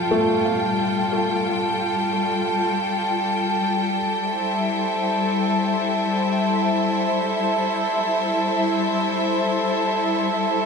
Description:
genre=ambient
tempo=free time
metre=none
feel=none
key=unclear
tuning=A4 = 440 Hz
part: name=clear symphonic string section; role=sustained chords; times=0.0-10.7 s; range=G3 to G5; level=-21 LUFS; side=left 3 dB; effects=none
part: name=felt-muted upright piano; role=arpeggios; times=0.0-4.0 s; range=F3 to F5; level=-26 LUFS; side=left 1 dB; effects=ping-pong delay
part: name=glass harmonica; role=texture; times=0.0-10.7 s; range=A5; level=-26 LUFS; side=right 6 dB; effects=none
room=wet scoring stage reverb, RT60 2.1 s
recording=none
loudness=-19 LUFS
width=side -5 dB against mid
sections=0.0-10.7 A section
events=none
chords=0.0 Fmaj9; 4.0 Am7/G

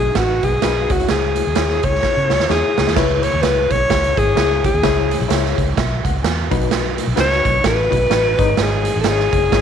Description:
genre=uptempo 1960s-style soul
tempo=128 BPM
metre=4/4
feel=swing 59% on 8ths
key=C# minor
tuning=A4 = 436 Hz
part: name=breathy alto saxophone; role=melody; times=0.0-9.6 s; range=F#4 to C#5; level=-18 LUFS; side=left 2 dB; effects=none
part: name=reed electric piano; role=accompaniment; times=0.0-9.6 s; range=G#2 to G#5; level=-23 LUFS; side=left 10 dB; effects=overdrive, fast tremolo
part: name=vintage muted fingered electric bass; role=bass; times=0.0-9.6 s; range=F#1 to C#3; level=-21 LUFS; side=equal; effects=none
part: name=raw garage drum kit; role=drums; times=0.2-9.6 s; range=crash cymbal, hi-hat, kick drum, snare drum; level=-20 LUFS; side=right 5 dB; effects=none
room=moderate echo chamber reverb, RT60 1.7 s, studio reverb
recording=1960s-style stereo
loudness=-14 LUFS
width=side -8 dB against mid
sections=0.0-3.0 A section; 3.0-9.6 B section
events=drum fill 2.0-3.0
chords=0.0 B; 0.9 C#m; 6.5 B; 8.3 G#sus4

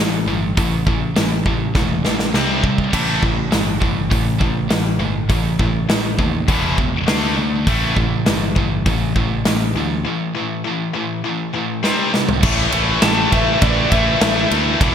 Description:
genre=hard rock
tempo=101 BPM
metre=4/4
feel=straight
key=A minor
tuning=A4 = 444 Hz
part: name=scooped high-gain guitar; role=riff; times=0.0-14.9 s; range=E2 to D4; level=-23 LUFS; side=right 8 dB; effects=distortion
part: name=tight distorted guitar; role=riff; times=0.0-14.9 s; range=E2 to D4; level=-22 LUFS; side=left 8 dB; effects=distortion
part: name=picked electric bass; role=bass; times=0.0-14.9 s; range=E1 to D#2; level=-22 LUFS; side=equal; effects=none
part: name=big rock drum kit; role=drums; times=0.6-14.9 s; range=crash cymbal, hi-hat, kick drum, ride cymbal, snare drum, toms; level=-19 LUFS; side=right 1 dB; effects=gated reverb
part: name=warm analog pad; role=sustained chords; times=12.4-14.9 s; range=E3 to B4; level=-31 LUFS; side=right 3 dB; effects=none
part: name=bluesy overdriven lead guitar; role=melody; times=13.0-14.5 s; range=D5 to A5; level=-21 LUFS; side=left 1 dB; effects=distortion
room=light reverb, small room ambience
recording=bright 1980s-style digital production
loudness=-15 LUFS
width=side -8 dB against mid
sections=0.0-12.4 A section; 12.4-14.9 B section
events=drum fill 1.8-2.9, 11.8-12.4; break 10.1-12.4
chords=0.0 A5; 2.3 C5; 2.9 A5; 6.5 E5; 7.1 D5; 7.7 A5; 11.8 C5; 12.4 A5

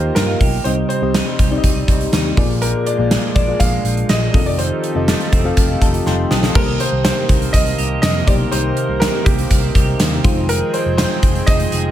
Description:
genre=1980s-style pop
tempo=122 BPM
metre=4/4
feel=straight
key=C minor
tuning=A4 = 440 Hz
part: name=warm concert grand piano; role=melody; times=0.0-11.9 s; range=G4 to F5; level=-22 LUFS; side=right 1 dB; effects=none
part: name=mellow FM electric piano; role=accompaniment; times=0.0-11.9 s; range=Bb2 to Eb6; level=-22 LUFS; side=left 4 dB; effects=chorus
part: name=chorused pulse-width pad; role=sustained chords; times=0.0-11.9 s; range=C3 to G5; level=-26 LUFS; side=right 2 dB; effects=none
part: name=twelve-string electric guitar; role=riff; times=0.0-11.9 s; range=Eb3 to Ab4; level=-27 LUFS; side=right 6 dB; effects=analog chorus
part: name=fingered electric bass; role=bass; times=0.0-11.9 s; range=F1 to G2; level=-21 LUFS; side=equal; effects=none
part: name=gated 80s drum kit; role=drums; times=0.2-11.8 s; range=crash cymbal, hi-hat, kick drum, snare drum, tambourine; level=-16 LUFS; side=equal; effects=gated reverb
room=light reverb, small room ambience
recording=none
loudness=-14 LUFS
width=side -12 dB against mid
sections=0.0-6.6 A section; 6.6-11.9 B section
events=drum fill 6.1-6.6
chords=0.0 Ebadd9; 0.7 Cm; 2.4 Bb7; 4.3 F7; 6.6 Cm7; 10.2 Fm7

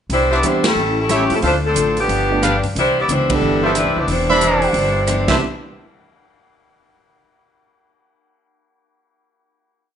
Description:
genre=jazz, big band swing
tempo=181 BPM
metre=4/4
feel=swing 63% on 8ths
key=C major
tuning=A4 = 439 Hz
part: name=clear saxophone section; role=melody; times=0.1-5.4 s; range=E3 to E5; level=-18 LUFS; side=equal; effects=none
part: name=picked steel-string acoustic guitar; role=accompaniment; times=0.1-5.4 s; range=G2 to F4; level=-24 LUFS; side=left 5 dB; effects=none
part: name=upright bass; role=bass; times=0.1-5.4 s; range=E1 to A2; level=-22 LUFS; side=equal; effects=none
part: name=swinging big-band drum kit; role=drums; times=0.1-5.3 s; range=crash cymbal, hi-hat, kick drum, ride cymbal, rim click, snare drum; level=-24 LUFS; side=right 2 dB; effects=none
part: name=bright trumpet section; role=stabs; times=0.3-5.4 s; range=D4 to B5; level=-20 LUFS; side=right 1 dB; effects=none
part: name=warm concert grand piano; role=accompaniment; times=0.4-5.4 s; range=E3 to E4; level=-23 LUFS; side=right 6 dB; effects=none
room=moderate large studio reverb, RT60 1.0 s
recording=nothing above 10.6 kHz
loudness=-14 LUFS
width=side -8 dB against mid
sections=0.1-5.4 A section; 5.4-6.7 final hit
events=band accent 0.6, 3.3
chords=0.1 Cmaj9; 0.8 A7; 1.4 Dm7; 2.1 G7; 2.8 Cmaj9; 5.4 N.C.

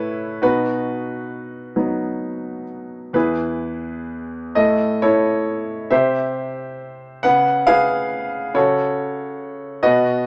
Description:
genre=classical, lyrical solo piano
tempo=44 BPM (dotted quarters)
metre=6/8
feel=uneven beats, rubato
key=unclear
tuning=A4 = 439 Hz
part: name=clear grand piano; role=solo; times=0.0-10.3 s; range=E2 to F#5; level=-20 LUFS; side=equal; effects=none
room=moderate studio reverb, RT60 0.8 s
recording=none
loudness=-20 LUFS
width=mono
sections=0.0-10.3 A section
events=none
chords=0.4 B; 3.1 E; 4.6 A; 5.9 C; 7.2 C#7; 8.5 F#m/C#

